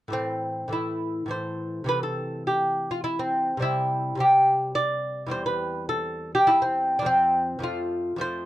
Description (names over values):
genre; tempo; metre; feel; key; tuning
classical, baroque-style dance for lute; 104 BPM; 3/4; rubato; A minor; A4 = 439 Hz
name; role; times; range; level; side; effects
lute; solo; 0.1-8.5 s; E2 to D5; -23 LUFS; equal; none
room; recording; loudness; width
light reverb; dry, close 1970s-style studio recording; -22 LUFS; side -14 dB against mid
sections
0.1-8.5 A section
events
none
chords
0.1 Am; 1.9 Am/C; 3.6 C; 5.3 C/E; 7.1 F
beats
| 0.13 0.73 1.31 | 1.89 2.48 3.05 | 3.63 4.20 4.76 | 5.33 5.90 6.49 | 7.06 7.63 8.21